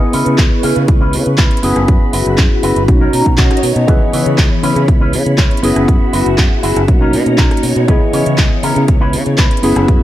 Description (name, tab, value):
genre	filtered disco house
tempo	120 BPM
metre	4/4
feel	straight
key	C# dorian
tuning	A4 = 440 Hz
part	tine electric piano	accompaniment	0.0-10.0 s	A#3 to D#5	-17 LUFS	equal	medium tremolo, phaser, sidechain pumping, low-pass filter
part	string machine, full ensemble	sustained chords	0.0-10.0 s	E3 to C#6	-21 LUFS	left 2 dB	phaser, ensemble chorus, sidechain pumping, low-pass filter
part	tube shaker	percussion	0.0-10.0 s	none	barely audible	none	none
part	electric guitar with an envelope filter	riff	0.1-10.0 s	C#4 to A#5	-21 LUFS	equal	sidechain pumping, low-pass filter
part	fingered electric bass	bass	0.1-10.0 s	F#1 to C#3	-17 LUFS	equal	sidechain pumping, low-pass filter
part	house drum kit	drums	0.1-10.0 s	handclaps, hi-hat, rim click	-20 LUFS	right 1 dB	sidechain pumping on hats, sidechain pumping on cymbals
part	electronic kick drum	drums	0.4-10.0 s	none	-12 LUFS	equal	none
room	little or no reverb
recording	none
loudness	-10 LUFS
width	side -13 dB against mid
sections	0.0-10.0 A section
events	clean electric guitar fill 2.9-3.9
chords	0.0 C#m7; 1.6 F#7sus4; 2.9 Bmaj9; 3.9 C#m7; 5.6 F#7sus4; 6.9 Bmaj9; 7.9 C#m7